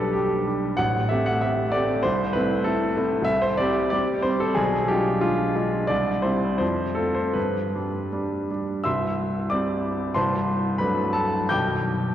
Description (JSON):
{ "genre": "classical, romantic character piece for solo piano", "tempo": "77-98 BPM", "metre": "2/4", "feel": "rubato", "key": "C major from 3.3 s", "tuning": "A4 = 440 Hz", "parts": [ { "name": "clear grand piano", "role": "solo", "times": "0.0-12.1 s", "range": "B0 to G6", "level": "-21 LUFS", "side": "equal", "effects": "none" } ], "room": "wet church reverb, RT60 3.0 s", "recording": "worn, warbling old tape, cassette tape, warbly pitch drift", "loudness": "-21 LUFS", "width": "side -11 dB against mid", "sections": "0.0-8.9 A section; 8.9-12.1 B section", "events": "none", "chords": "0.0 G/B; 0.8 Am7; 2.0 Am/C; 3.3 C5; 4.6 Bdim7; 5.9 C; 6.6 F; 7.4 G; 8.9 C; 10.2 D7/C; 11.5 G/B" }